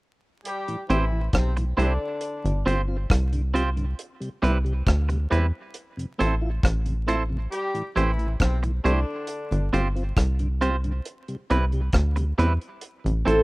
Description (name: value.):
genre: roots reggae.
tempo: 68 BPM.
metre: 4/4.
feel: straight.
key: A minor.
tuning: A4 = 440 Hz.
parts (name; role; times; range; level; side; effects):
warm horn section; second line; 0.5-9.7 s; C3 to G4; -31 LUFS; left 2 dB; none.
deep reggae drum kit; drums; 0.5-13.4 s; hi-hat, kick drum, rim click; -24 LUFS; equal; none.
mellow tonewheel organ; accompaniment; 0.7-13.3 s; F2 to G4; -31 LUFS; equal; slow rotary speaker.
clean electric guitar; accompaniment; 0.9-13.4 s; G3 to C5; -26 LUFS; right 3 dB; none.
tight sequencer bass; bass; 0.9-13.4 s; G1 to E2; -23 LUFS; equal; none.
vibraphone with medium hard mallets; melody; 13.3-13.4 s; A4; -18 LUFS; equal; none.
room: little or no reverb.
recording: rough home demo mix, vinyl crackle.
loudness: -22 LUFS.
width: side -22 dB against mid.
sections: 0.5-13.4 A section.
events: none.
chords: 0.5 Am7; 2.2 G7sus4; 4.0 Cmaj7; 5.8 Fmaj7; 7.5 Am7; 9.3 G7sus4; 11.0 Cmaj7; 12.8 Fmaj7.